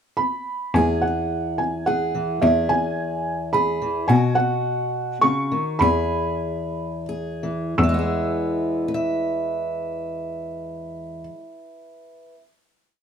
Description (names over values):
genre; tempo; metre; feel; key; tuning
folk; 82-108 BPM; 3/4; straight; E major; A4 = 440 Hz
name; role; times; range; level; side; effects
felt-muted upright piano; melody; 0.2-11.2 s; E5 to E6; -23 LUFS; right 2 dB; none
bright cello; bass; 0.7-11.2 s; E2 to B2; -23 LUFS; left 1 dB; none
fingerpicked steel-string acoustic guitar; accompaniment; 0.8-12.4 s; E2 to E5; -24 LUFS; left 1 dB; none
room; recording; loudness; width
light reverb; minimal, uncompressed stereo recording; -20 LUFS; side -7 dB against mid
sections
0.0-0.7 pickup bar; 0.7-7.8 A section; 7.8-12.2 final chord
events
slowing down 4.1-7.8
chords
0.0 N.C.; 0.7 E; 4.1 Badd9; 5.8 E